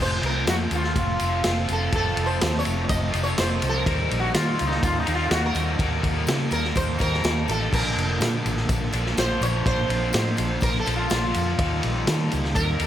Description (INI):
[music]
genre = psychedelic rock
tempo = 124 BPM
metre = 4/4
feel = straight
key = unclear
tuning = A4 = 439 Hz
[part]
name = sitar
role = melody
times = 0.0-12.9 s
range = Eb4 to Eb5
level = -27 LUFS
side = equal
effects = dub echo
[part]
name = crunchy overdriven guitar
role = riff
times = 0.0-12.9 s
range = Bb2 to F4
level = -29 LUFS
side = equal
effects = harmonic tremolo
[part]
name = vintage muted fingered electric bass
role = bass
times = 0.0-12.9 s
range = F1 to Eb3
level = -26 LUFS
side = equal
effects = none
[part]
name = tanpura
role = drone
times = 0.0-12.9 s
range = F2 to F3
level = -36 LUFS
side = equal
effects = none
[part]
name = vintage drum kit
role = drums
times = 0.2-12.9 s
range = crash cymbal, kick drum, ride cymbal, snare drum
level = -26 LUFS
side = equal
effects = dub echo
[part]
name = tambourine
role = percussion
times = 0.2-12.9 s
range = none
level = -40 LUFS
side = left 5 dB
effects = none
[sound]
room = small room reverb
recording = echo-heavy mix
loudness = -21 LUFS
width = side -11 dB against mid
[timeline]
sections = 0.0-12.9 A section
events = sitar solo 0.0-12.9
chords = 0.0 F; 3.9 Eb; 7.7 Bb; 11.6 Eb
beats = 0.47 0.96 1.44 | 1.93 2.41 2.90 3.38 | 3.87 4.35 4.83 5.32 | 5.80 6.29 6.77 7.25 | 7.73 8.22 8.70 9.18 | 9.66 10.15 10.63 11.11 | 11.59 12.08 12.56